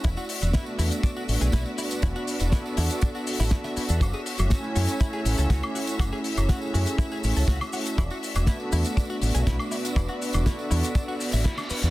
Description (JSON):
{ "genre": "nu-disco, nu disco", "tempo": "121 BPM", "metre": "4/4", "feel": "straight", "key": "unclear", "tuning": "A4 = 438 Hz", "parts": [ { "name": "warm analog pad", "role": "accompaniment", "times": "0.0-11.9 s", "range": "A3 to G#5", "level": "-30 LUFS", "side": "right 1 dB", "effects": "chorus, sidechain pumping, tape echo" }, { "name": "clear symphonic string section", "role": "sustained chords", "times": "0.0-11.9 s", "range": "F#4 to E5", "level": "-36 LUFS", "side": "equal", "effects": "sidechain pumping" }, { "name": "direct-recorded clean electric guitar", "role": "riff", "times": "0.0-11.8 s", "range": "E3 to E5", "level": "-37 LUFS", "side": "left 1 dB", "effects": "analog chorus, tape echo" }, { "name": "fingered electric bass with an envelope filter", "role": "bass", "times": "0.0-11.9 s", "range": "E1 to F#2", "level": "-24 LUFS", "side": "equal", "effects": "none" }, { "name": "damped 70s drum kit", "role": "drums", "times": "0.0-11.9 s", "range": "hi-hat, shaker, snare drum, woodblock", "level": "-32 LUFS", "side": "left 2 dB", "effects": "none" }, { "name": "kick drum", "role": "drums", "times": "0.0-11.6 s", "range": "none", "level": "-23 LUFS", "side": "equal", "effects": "soft clipping on snare" }, { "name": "tambourine", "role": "percussion", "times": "0.0-11.9 s", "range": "none", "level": "-42 LUFS", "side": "right 2 dB", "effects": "none" }, { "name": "reverse cymbal", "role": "sound effects", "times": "11.2-11.9 s", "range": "none", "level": "-35 LUFS", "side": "equal", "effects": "none" } ], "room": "light reverb, small room ambience", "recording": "dense, heavily limited modern master", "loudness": "-23 LUFS", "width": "side -18 dB against mid", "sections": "0.0-11.9 A section", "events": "reverse cymbal 11.2-11.9", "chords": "0.0 E9sus4; 4.0 F#m7; 8.0 E9sus4" }